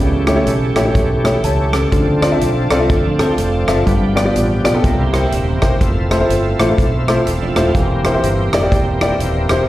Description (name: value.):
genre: uptempo gospel.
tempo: 124 BPM.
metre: 4/4.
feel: swing 61% on 8ths.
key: C major.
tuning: A4 = 440 Hz.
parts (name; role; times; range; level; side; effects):
warm concert grand piano; accompaniment; 0.0-9.6 s; G2 to A5; -17 LUFS; left 1 dB; slapback echo.
bright tonewheel organ; sustained chords; 0.0-9.7 s; E3 to A4; -21 LUFS; right 1 dB; slow rotary speaker, overdrive, chorus vibrato.
fingered electric bass; bass; 0.0-9.7 s; Eb1 to D2; -19 LUFS; equal; none.
natural country drum kit; drums; 0.3-9.6 s; hi-hat, kick drum, rim click; -19 LUFS; equal; none.
twelve-string electric guitar; second line; 3.1-7.9 s; E3 to A4; -28 LUFS; right 5 dB; ensemble chorus, slapback echo.
room: light reverb.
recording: live gig heard through the venue's PA, recital hall reverb.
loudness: -13 LUFS.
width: side -15 dB against mid.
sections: 0.0-9.7 A section.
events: none.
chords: 0.0 A7; 1.9 Dm7; 3.9 G7; 4.8 C7; 5.8 Fmaj7; 7.7 C7/E.